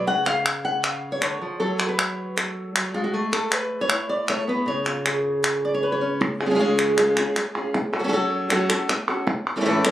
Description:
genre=flamenco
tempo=156 BPM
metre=4/4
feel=straight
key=C# phrygian dominant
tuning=A4 = 442 Hz
part: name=flamenco guitar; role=melody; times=0.0-9.9 s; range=A2 to F#5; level=-22 LUFS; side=equal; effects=none
part: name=palmas hand claps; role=percussion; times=0.3-9.9 s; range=none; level=-24 LUFS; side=equal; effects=none
room=moderate studio reverb, RT60 0.5 s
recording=recorded on a phone in the room, club reverb, compression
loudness=-21 LUFS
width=side -13 dB against mid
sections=0.0-6.2 A section; 6.2-9.9 B section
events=none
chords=0.1 C#; 1.6 F#m; 3.1 A; 4.7 C#; 7.7 F#m; 9.3 A

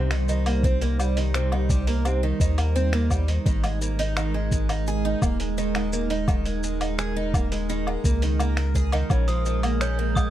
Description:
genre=folktronica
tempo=85 BPM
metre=4/4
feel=straight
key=Eb mixolydian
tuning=A4 = 440 Hz
part: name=warbly tape-like pad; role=sustained chords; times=0.0-10.3 s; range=G3 to C5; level=-29 LUFS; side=right 3 dB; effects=chorus, built-in reverb
part: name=picked twelve-string acoustic guitar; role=arpeggios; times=0.0-10.3 s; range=C3 to Bb4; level=-30 LUFS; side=right 1 dB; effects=tape echo
part: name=warm sub bass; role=bass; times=0.0-10.3 s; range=Eb1 to Eb2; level=-25 LUFS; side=equal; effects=none
part: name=lo-fi sampler-style drum kit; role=drums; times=0.1-10.3 s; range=finger snaps, hi-hat, shaker, woodblock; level=-32 LUFS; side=left 1 dB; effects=overdrive
part: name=electronic kick drum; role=drums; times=0.6-10.3 s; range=none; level=-24 LUFS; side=equal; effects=overdrive
part: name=glockenspiel with hard plastic mallets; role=second line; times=9.3-10.3 s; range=Eb6 to G6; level=-32 LUFS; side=right 3 dB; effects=none
room=little or no reverb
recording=dark, warm production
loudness=-21 LUFS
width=side -12 dB against mid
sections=0.0-10.3 A section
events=none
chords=0.0 Eb6; 3.5 Absus2; 9.1 Bbm7

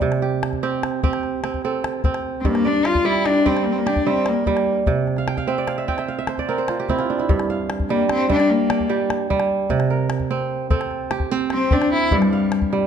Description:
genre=west african traditional, West African string and xylophone music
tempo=99 BPM (dotted quarters)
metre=12/8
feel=straight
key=G dorian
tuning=A4 = 440 Hz
part: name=kora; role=arpeggios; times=0.0-12.9 s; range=G2 to G5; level=-21 LUFS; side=right 4 dB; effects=none
part: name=calabash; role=percussion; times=0.0-12.8 s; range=none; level=-25 LUFS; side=left 2 dB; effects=none
part: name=rich cello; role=melody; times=2.4-12.7 s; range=G3 to F4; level=-20 LUFS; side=left 3 dB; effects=none
room=moderate recital hall reverb, RT60 1.6 s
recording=dark, warm production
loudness=-18 LUFS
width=side -8 dB against mid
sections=0.0-7.3 A section; 7.3-12.9 B section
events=kora fill 5.2-7.3; cello solo 7.3-12.9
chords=0.0 C5; 2.5 Gm; 4.9 N.C.; 7.3 Gm; 9.7 C5; 12.1 G5

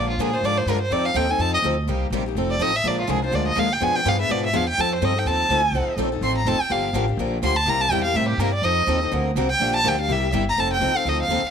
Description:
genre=acoustic string swing (jazz manouche)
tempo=248 BPM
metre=4/4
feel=swing 56% on 8ths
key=F mixolydian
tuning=A4 = 440 Hz
part: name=rich violin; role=melody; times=0.0-11.5 s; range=F4 to C6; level=-22 LUFS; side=right 1 dB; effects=none
part: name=picked steel-string acoustic guitar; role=accompaniment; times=0.0-11.4 s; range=B2 to B4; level=-26 LUFS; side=left 11 dB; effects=none
part: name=picked steel-string acoustic guitar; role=accompaniment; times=0.0-11.4 s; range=B2 to B4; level=-28 LUFS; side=right 11 dB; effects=none
part: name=upright bass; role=bass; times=0.0-11.5 s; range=F1 to Bb2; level=-25 LUFS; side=right 1 dB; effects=none
room=moderate echo chamber reverb, RT60 1.3 s, small room ambience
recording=1960s-style stereo with parts hard left and right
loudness=-19 LUFS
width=side -7 dB against mid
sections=0.0-10.6 A section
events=violin solo 0.0-10.6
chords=0.0 Bb7; 0.9 F7; 1.9 Cm7; 2.4 F7; 2.8 Bb7; 3.8 Bdim7; 4.8 F7; 6.7 Gm7; 7.7 C7; 8.6 F7; 9.1 Daug7; 9.6 Gm7; 10.1 C7; 10.6 F7

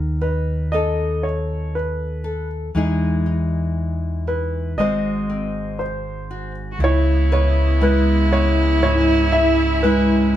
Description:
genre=acoustic folk-pop ballad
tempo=59 BPM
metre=4/4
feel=straight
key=C# minor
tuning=A4 = 437 Hz
part: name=nylon-string guitar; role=accompaniment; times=0.0-10.4 s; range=G#2 to B#4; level=-24 LUFS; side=left 1 dB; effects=none
part: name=fingered electric bass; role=bass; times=0.0-10.4 s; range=G#1 to E2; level=-21 LUFS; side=equal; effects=none
part: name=warm concert grand piano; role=melody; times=0.2-10.4 s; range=E4 to E5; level=-23 LUFS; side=equal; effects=plate reverb
part: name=rich cello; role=second line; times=6.7-10.4 s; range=E4 to F#4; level=-21 LUFS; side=equal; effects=none
part: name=warm chamber string section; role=sustained chords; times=6.8-10.4 s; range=C#3 to E4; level=-28 LUFS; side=left 1 dB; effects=none
room=moderate studio reverb, RT60 0.6 s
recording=heard from further back in the room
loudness=-17 LUFS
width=side -11 dB against mid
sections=0.0-6.8 A section; 6.8-10.4 B section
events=none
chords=0.0 B7/D#; 2.7 Emaj7; 4.8 G#7; 6.8 C#m7

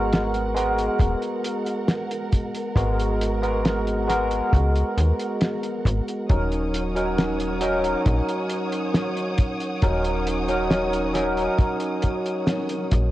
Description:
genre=vaporwave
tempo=68 BPM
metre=4/4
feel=straight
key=Eb minor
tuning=A4 = 440 Hz
part: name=barky tine electric piano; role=accompaniment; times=0.0-13.1 s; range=Gb3 to Bb4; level=-24 LUFS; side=equal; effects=overdrive, analog chorus, tape echo
part: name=warm studio string section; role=sustained chords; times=0.0-13.1 s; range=Bb4 to Eb6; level=-34 LUFS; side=right 1 dB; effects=vintage 12-bit sampler grit
part: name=slap-like FM bass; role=bass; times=0.0-13.1 s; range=Eb1 to Eb2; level=-25 LUFS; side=equal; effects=none
part: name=cloth-damped thuddy drum kit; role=drums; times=0.1-13.1 s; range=cabasa, hi-hat, snare drum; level=-27 LUFS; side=equal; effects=none
part: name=kick drum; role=drums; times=1.0-13.1 s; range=none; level=-20 LUFS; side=equal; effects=none
room=light reverb, studio reverb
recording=worn, warbling old tape, cassette tape, warbly pitch drift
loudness=-21 LUFS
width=side -15 dB against mid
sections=0.0-13.1 A section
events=band accent 12.5-12.9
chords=0.0 Abm9; 6.3 Ebm7

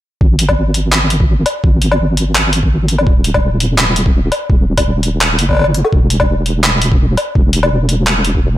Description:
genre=half-time drum and bass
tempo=168 BPM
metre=4/4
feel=swing 56% on 16ths, half-time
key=unclear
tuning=A4 = 440 Hz
part: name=deep soft wobble bass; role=bass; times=0.2-8.6 s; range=D#1 to G#1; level=-14 LUFS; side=equal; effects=chorus
part: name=electronic kick drum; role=drums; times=0.2-8.4 s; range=none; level=-13 LUFS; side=equal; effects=none
part: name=boom bap sampler-style drum kit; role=drums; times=0.4-8.3 s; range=handclaps, hi-hat, woodblock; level=-16 LUFS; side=left 1 dB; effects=none
room=little or no reverb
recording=none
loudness=-11 LUFS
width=side -14 dB against mid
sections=0.2-8.6 A section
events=none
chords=none

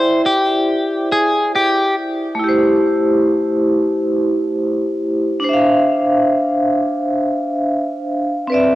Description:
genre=hip hop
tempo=69 BPM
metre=4/4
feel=swing 57% on 16ths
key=unclear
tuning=A4 = 438 Hz
part: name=electric guitar at the edge of break-up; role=melody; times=0.0-1.9 s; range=G4 to B#4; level=-16 LUFS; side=left 1 dB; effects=low-pass filter, cassette tape
part: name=vibraphone with medium hard mallets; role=accompaniment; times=0.0-8.8 s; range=A3 to G5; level=-15 LUFS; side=equal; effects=cassette tape, low-pass filter
room=moderate lush hall reverb, RT60 2.4 s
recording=home recording on cassette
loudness=-14 LUFS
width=side -16 dB against mid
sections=0.0-8.8 A section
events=none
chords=0.0 Em7b13; 5.5 Dm9

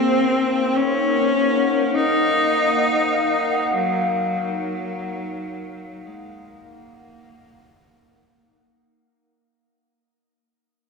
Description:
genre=ambient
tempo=free time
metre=none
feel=none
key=unclear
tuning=A4 = 441 Hz
part: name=clear cello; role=melody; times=0.0-8.4 s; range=Gb3 to Eb4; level=-20 LUFS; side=left 2 dB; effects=shimmer reverb, dub echo
part: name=warbly tape-like pad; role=sustained chords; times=0.0-9.0 s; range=Bb3 to Gb5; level=-24 LUFS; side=equal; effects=chorus, built-in reverb, phaser, shimmer reverb
part: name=bowed-like drone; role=drone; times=0.0-9.1 s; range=Bb3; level=-32 LUFS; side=left 2 dB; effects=built-in reverb
room=wet spring reverb, RT60 2.7 s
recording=echo-heavy mix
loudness=-18 LUFS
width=side -4 dB against mid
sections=0.0-9.0 A section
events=fade-out 0.0-9.0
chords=0.0 Ebm

